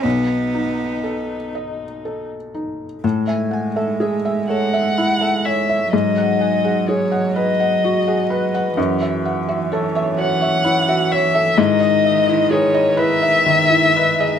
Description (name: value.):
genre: neoclassical piano and strings.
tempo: 42 BPM (dotted quarters).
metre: 6/8.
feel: rubato.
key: unclear.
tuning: A4 = 440 Hz.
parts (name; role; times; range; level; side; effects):
dark violin; melody; 0.0-14.4 s; D#4 to F#5; -18 LUFS; left 3 dB; slapback echo.
warm cello; second line; 0.0-14.4 s; D#3 to B3; -24 LUFS; right 5 dB; none.
felt-muted upright piano; accompaniment; 0.0-14.4 s; B1 to G#5; -20 LUFS; left 1 dB; none.
harp-like synth pluck; arpeggios; 3.0-14.3 s; E4 to G#5; -26 LUFS; right 1 dB; chorus, slapback echo.
room: light reverb.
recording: close, detailed microphones.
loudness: -15 LUFS.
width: side -8 dB against mid.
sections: 0.0-3.0 A section; 3.0-14.4 B section.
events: none.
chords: 0.0 B7; 3.0 Amaj7; 5.9 G#m7; 8.8 F#m7; 11.6 Emaj7/G#.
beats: | 0.04 1.54 | 3.04 4.49 | 5.92 7.35 | 8.77 10.18 | 11.58 12.99.